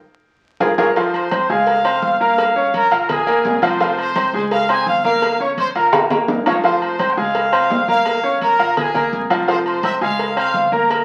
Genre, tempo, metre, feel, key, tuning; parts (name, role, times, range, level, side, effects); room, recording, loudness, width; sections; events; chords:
latin, salsa; 169 BPM; 4/4; straight; F minor; A4 = 439 Hz
bright baby grand piano; accompaniment; 0.6-11.0 s; F3 to F6; -21 LUFS; equal
upright bass; bass; 0.6-11.0 s; F1 to Db2; -37 LUFS; equal
congas; percussion; 0.6-11.0 s; -34 LUFS; equal
cowbell and bongos; percussion; 0.6-11.0 s; -26 LUFS; equal
timbales and agogo bells; percussion; 0.6-11.0 s; -28 LUFS; equal
bright trumpet section; melody; 0.8-11.0 s; Ab4 to E6; -21 LUFS; equal
wet club reverb, RT60 0.6 s; very old 78 rpm record, vinyl crackle; -17 LUFS; mono
1.0-11.0 A section
band accent 0.0-1.0; drum fill 0.2-1.0, 5.9-6.6
0.2 Bbm7; 1.0 Fm; 1.7 Dbmaj7; 2.4 Gm7b5; 3.1 Bb5; 3.8 Fm; 4.5 Dbmaj7; 5.2 Gm7b5; 5.9 Bbm; 6.6 Fm; 7.4 Dbmaj7; 8.1 Gm7b5; 8.8 Bb5; 9.5 Fm; 10.2 Dbmaj7